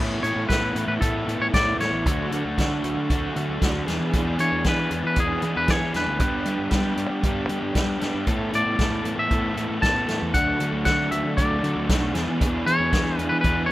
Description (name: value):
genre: indie rock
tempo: 116 BPM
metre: 4/4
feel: straight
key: A major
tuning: A4 = 440 Hz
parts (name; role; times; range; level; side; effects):
- crunchy overdriven guitar; riff; 0.0-13.7 s; E2 to A4; -28 LUFS; left 3 dB; none
- crunchy overdriven guitar; riff; 0.0-13.7 s; D3 to A4; -30 LUFS; right 6 dB; ensemble chorus
- fuzz fingered electric bass; bass; 0.0-13.7 s; A1 to G3; -28 LUFS; equal; overdrive
- twangy electric guitar; melody; 0.2-13.7 s; G#4 to A5; -25 LUFS; left 1 dB; warbly pitch drift
- vintage drum kit; drums; 0.2-13.6 s; hi-hat, kick drum, snare drum; -25 LUFS; equal; none
room: small room ambience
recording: rough home demo mix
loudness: -21 LUFS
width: side -16 dB against mid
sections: 0.0-13.7 A section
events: none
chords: 0.0 Asus2; 2.1 Dmaj7; 3.9 E7; 6.2 G; 8.3 Asus2; 10.3 D; 12.2 E7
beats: 0.49 1.01 1.53 | 2.05 2.57 3.09 3.61 | 4.13 4.65 5.16 5.68 | 6.20 6.72 7.24 7.75 | 8.27 8.79 9.31 9.82 | 10.34 10.86 11.38 11.89 | 12.41 12.93 13.45